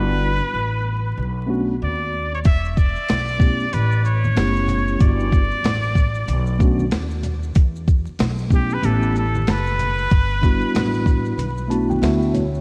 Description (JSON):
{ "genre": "hip hop, jazz-hop", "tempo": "94 BPM", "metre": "4/4", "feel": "swing 60% on 16ths", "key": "E dorian", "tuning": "A4 = 439 Hz", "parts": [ { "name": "trumpet with straight mute", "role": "melody", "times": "0.0-12.0 s", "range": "G4 to E5", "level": "-28 LUFS", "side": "equal", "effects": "tape echo" }, { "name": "mellow tine electric piano", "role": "accompaniment", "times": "0.0-12.6 s", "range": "G3 to A5", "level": "-26 LUFS", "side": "equal", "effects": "none" }, { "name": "upright bass", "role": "bass", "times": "0.0-12.6 s", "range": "E1 to E2", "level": "-25 LUFS", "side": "equal", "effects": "none" }, { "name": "boom bap sampler-style drum kit", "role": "drums", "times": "2.4-12.5 s", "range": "hi-hat, kick drum, shaker, snare drum", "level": "-20 LUFS", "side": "equal", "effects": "none" }, { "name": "maracas and congas", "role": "percussion", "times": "2.4-12.6 s", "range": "none", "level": "-35 LUFS", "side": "equal", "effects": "none" } ], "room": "moderate lush hall reverb, RT60 2.9 s", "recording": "dreamy mix soaked in reverb, vinyl crackle, faint mains hum", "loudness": "-20 LUFS", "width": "mono", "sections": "0.0-12.6 A section", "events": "kick muted 11.4-12.6; tine electric piano fill 11.4-12.6", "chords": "0.0 Em9/G; 1.2 Bm9; 2.5 Em7; 3.7 A9; 5.0 Em9/G; 6.3 Bm9; 7.6 Em; 8.8 A9; 10.1 Em9/G; 11.4 Bm7; 12.0 D69" }